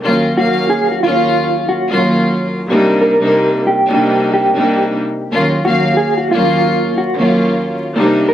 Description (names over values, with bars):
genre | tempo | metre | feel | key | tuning
hip hop | 91 BPM | 4/4 | swing 61% on 16ths | unclear | A4 = 439 Hz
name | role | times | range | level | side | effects
warm chamber string section | accompaniment | 0.0-8.3 s | Eb2 to F5 | -13 LUFS | equal | cassette tape, high-pass filter, low-pass filter
mellow electric guitar | melody | 0.4-8.3 s | F4 to Bb4 | -16 LUFS | equal | tremolo, high-pass filter, low-pass filter, tape echo
room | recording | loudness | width
moderate small room reverb, RT60 0.6 s | vinyl crackle | -12 LUFS | side -11 dB against mid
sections
0.0-8.3 A section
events
none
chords
0.0 Ebm7; 2.7 Cm7; 5.3 Ebm7